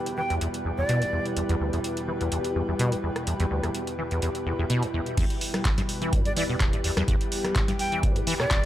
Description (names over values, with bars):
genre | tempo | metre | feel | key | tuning
acid house | 126 BPM | 4/4 | swing 53% on 16ths | E minor | A4 = 440 Hz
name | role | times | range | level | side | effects
warm studio string section | sustained chords | 0.0-8.7 s | E2 to G3 | -33 LUFS | left 1 dB | sidechain pumping
granular cloud pad | texture | 0.0-8.7 s | E4 to G5 | -33 LUFS | equal | built-in reverb, sidechain pumping
booming analog drum machine | drums | 0.1-8.6 s | crash cymbal, handclaps, hi-hat, rim click, snare drum | -31 LUFS | equal | none
breathy bright jazz flute | melody | 0.2-1.3, 6.3-8.7 s | D5 to G5 | -30 LUFS | equal | tape echo
acid bass, saw | riff | 0.2-8.6 s | E1 to E3 | -28 LUFS | equal | ensemble chorus, analog delay
electronic kick drum | drums | 5.2-8.6 s | none | -25 LUFS | equal | none
room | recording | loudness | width
light reverb | none | -24 LUFS | side -13 dB against mid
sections
0.0-5.2 A section; 5.2-8.7 B section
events
filter sweep on acid bass 0.0-5.2; drop 5.2-8.7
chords
0.0 Em